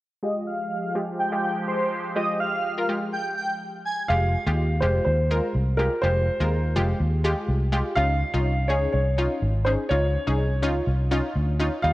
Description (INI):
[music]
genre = pop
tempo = 124 BPM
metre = 4/4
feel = straight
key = F minor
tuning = A4 = 441 Hz
[part]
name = airy dreamy lead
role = melody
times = 0.2-3.9 s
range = C5 to Ab5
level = -27 LUFS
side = equal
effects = chorus, low-pass filter
[part]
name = analog pluck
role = accompaniment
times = 0.2-11.9 s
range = G3 to Bb4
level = -28 LUFS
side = left 1 dB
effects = chorus, low-pass filter
[part]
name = sweeping resonant pad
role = sustained chords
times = 0.2-4.1 s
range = F3 to G4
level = -32 LUFS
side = right 1 dB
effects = chorus, low-pass filter
[part]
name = dark baby grand piano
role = melody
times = 4.1-11.9 s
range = Bb4 to F5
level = -26 LUFS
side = equal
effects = digital delay
[part]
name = vintage muted fingered electric bass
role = bass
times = 4.1-11.9 s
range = F1 to Eb2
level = -23 LUFS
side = equal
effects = none
[sound]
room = light reverb, digital ambience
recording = worn, warbling old tape, cassette tape, warbly pitch drift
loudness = -22 LUFS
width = side -17 dB against mid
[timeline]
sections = 0.2-4.1 A section; 4.1-11.9 B section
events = filter sweep 0.2-4.1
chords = 0.2 Fmadd9; 8.0 Dbadd9